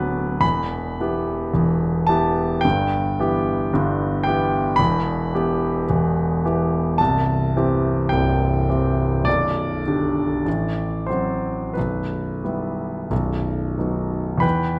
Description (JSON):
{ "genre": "classical, romantic nocturne for solo piano", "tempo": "43-57 BPM", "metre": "4/4", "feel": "rubato", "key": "E minor from 4.8 s", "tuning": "A4 = 441 Hz", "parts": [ { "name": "clear concert grand piano", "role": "solo", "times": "0.0-14.8 s", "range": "B0 to B5", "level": "-21 LUFS", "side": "equal", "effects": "none" } ], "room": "moderate recital hall reverb, RT60 1.4 s", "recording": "none", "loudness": "-21 LUFS", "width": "mono", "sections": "0.0-14.4 A section", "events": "none", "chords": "0.4 Em; 2.6 Em/G; 4.8 Em; 7.0 C; 9.3 G/B; 10.5 F#dim/A; 11.8 Em/B; 13.1 B" }